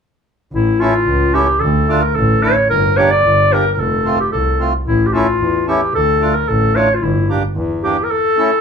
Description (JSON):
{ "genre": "klezmer", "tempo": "111 BPM", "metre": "2/4", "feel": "straight", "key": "A phrygian dominant", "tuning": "A4 = 440 Hz", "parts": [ { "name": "clear clarinet", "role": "melody", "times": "0.5-8.6 s", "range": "E4 to D5", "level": "-14 LUFS", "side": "left 1 dB", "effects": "none" }, { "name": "clear double bass", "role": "bass", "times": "0.5-7.9 s", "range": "F1 to E2", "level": "-17 LUFS", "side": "equal", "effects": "none" }, { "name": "accordion", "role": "accompaniment", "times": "0.8-8.5 s", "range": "A3 to G4", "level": "-19 LUFS", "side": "right 1 dB", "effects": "none" } ], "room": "wet small room reverb, RT60 0.5 s", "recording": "band playing live in one room", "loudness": "-12 LUFS", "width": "side -6 dB against mid", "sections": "0.5-8.6 A section", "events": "none", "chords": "0.5 A; 1.6 Dm; 2.7 Gm; 3.8 F; 4.9 A; 5.9 Dm; 7.0 Gm; 8.1 A" }